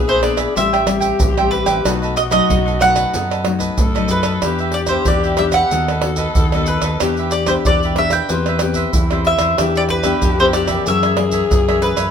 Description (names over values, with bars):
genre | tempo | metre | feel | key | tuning
samba and choro | 93 BPM | 4/4 | straight | E minor | A4 = 441 Hz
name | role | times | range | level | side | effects
mandolin | melody | 0.0-12.1 s | B4 to G5 | -19 LUFS | right 1 dB | none
growling tenor saxophone | second line | 0.0-12.1 s | E4 to B4 | -22 LUFS | left 6 dB | none
cavaquinho | accompaniment | 0.0-12.1 s | D4 to G5 | -24 LUFS | right 4 dB | none
nylon-string guitar | accompaniment | 0.0-12.1 s | F#2 to A4 | -23 LUFS | left 6 dB | none
fingered electric bass | bass | 0.0-12.1 s | A1 to A2 | -22 LUFS | equal | none
maracas, pandeiro, tamborim and surdo | percussion | 0.1-12.1 s | none | -20 LUFS | right 2 dB | none
room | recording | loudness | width
moderate studio reverb, RT60 0.7 s | minimal, uncompressed stereo recording | -14 LUFS | side -7 dB against mid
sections
0.0-12.1 A section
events
none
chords
0.0 E7; 0.6 Am7; 1.9 B7; 4.4 Em7; 5.7 B7/D#; 7.0 Em7; 8.3 Cmaj7/E; 9.6 Em7; 10.9 F#7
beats
0.56 1.21 | 1.85 2.50 3.14 3.79 | 4.43 5.08 5.72 6.37 | 7.01 7.66 8.30 8.94 | 9.59 10.23 10.87 11.52